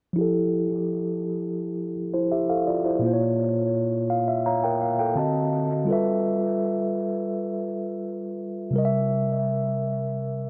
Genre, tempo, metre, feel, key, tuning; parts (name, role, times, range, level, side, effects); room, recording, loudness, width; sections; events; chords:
R&B; 84 BPM; 4/4; straight; F major; A4 = 441 Hz
mellow tine electric piano; solo; 0.1-10.5 s; Bb2 to Bb5; -25 LUFS; equal; low-pass filter, tape echo
moderate plate reverb, RT60 2.7 s; echo-heavy mix; -25 LUFS; mono
0.2-10.5 A section
filter sweep on tine electric piano 0.2-10.5; tine electric piano fill 3.7-5.9
0.2 Fmaj9; 3.0 Bbm; 5.2 D7b9; 5.9 G13; 8.7 C7